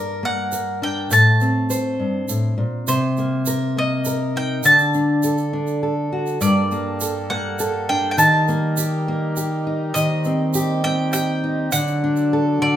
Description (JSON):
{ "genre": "acoustic folk duo or small band", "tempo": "68 BPM (dotted quarters)", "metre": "6/8", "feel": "straight", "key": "G harmonic minor", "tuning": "A4 = 440 Hz", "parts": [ { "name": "bowl-back mandolin", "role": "melody", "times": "0.0-12.8 s", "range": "C5 to A5", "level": "-20 LUFS", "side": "equal", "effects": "none" }, { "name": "fingerpicked steel-string acoustic guitar", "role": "accompaniment", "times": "0.0-12.8 s", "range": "G2 to C5", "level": "-20 LUFS", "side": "left 1 dB", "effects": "none" }, { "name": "egg shaker", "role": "percussion", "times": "0.5-12.2 s", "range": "none", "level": "-28 LUFS", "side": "right 7 dB", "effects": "none" }, { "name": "pedal harmonium", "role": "sustained chords", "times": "6.4-12.8 s", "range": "Eb2 to C5", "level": "-29 LUFS", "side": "right 3 dB", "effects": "none" } ], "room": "moderate large studio reverb, RT60 0.9 s", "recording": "minimal, uncompressed stereo recording", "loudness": "-17 LUFS", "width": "side -11 dB against mid", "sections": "0.0-12.8 A section", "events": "none", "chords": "0.0 Gm; 1.1 Gsus24; 2.9 Cm7; 4.6 D; 6.4 Gmadd9; 8.2 Eb; 10.0 Cm/Eb; 11.7 D" }